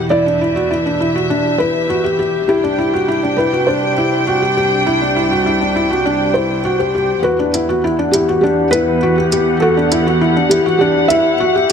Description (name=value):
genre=piano and strings electronica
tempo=101 BPM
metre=4/4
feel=straight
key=E minor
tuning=A4 = 438 Hz
part: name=dark chamber string section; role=sustained chords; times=0.0-11.7 s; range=C2 to G5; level=-17 LUFS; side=right 1 dB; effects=low-pass filter
part: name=felt-muted upright piano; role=riff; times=0.0-11.7 s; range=D4 to G4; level=-16 LUFS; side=equal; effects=ping-pong delay
part: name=felt-muted upright piano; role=melody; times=0.1-11.7 s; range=G4 to E5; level=-18 LUFS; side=left 1 dB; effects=ping-pong delay
part: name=electronic hi-hat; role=drums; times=7.5-11.7 s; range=none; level=-21 LUFS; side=right 2 dB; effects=overdrive
room=moderate concert hall reverb, RT60 2.1 s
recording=none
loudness=-12 LUFS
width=side -7 dB against mid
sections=0.0-7.2 A section; 7.2-11.7 B section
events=build-up 7.2-11.7; filter sweep on string section 7.2-11.7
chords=0.0 Emadd9; 2.5 Csus2; 7.2 Emadd9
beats=| 0.12 0.71 1.30 1.90 | 2.49 3.09 3.68 4.27 | 4.87 5.46 6.06 6.65 | 7.24 7.84 8.43 9.03 | 9.62 10.21 10.81 11.40